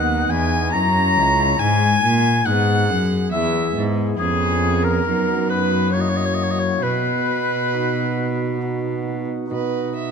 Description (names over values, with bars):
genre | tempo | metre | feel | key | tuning
classical, baroque-style sonata movement with continuo | 69 BPM | 3/4 | straight | B major | A4 = 440 Hz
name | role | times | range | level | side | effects
warm oboe | melody | 0.0-10.1 s | G#4 to A#5 | -22 LUFS | left 7 dB | none
rich violin | second line | 0.0-10.1 s | G#4 to A#5 | -25 LUFS | right 8 dB | none
pipe organ, flutes | accompaniment | 0.0-10.1 s | C#2 to D#5 | -23 LUFS | equal | none
rich cello | bass | 0.0-10.1 s | C#2 to B2 | -22 LUFS | right 1 dB | none
room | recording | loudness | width
moderate recital hall reverb, RT60 1.6 s | none | -17 LUFS | side -6 dB against mid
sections
0.0-9.5 A section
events
none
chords
0.0 B; 0.7 F#7; 1.6 G#m; 3.3 E; 4.2 C#7/E#; 5.0 B/F#; 5.9 F#7; 6.8 B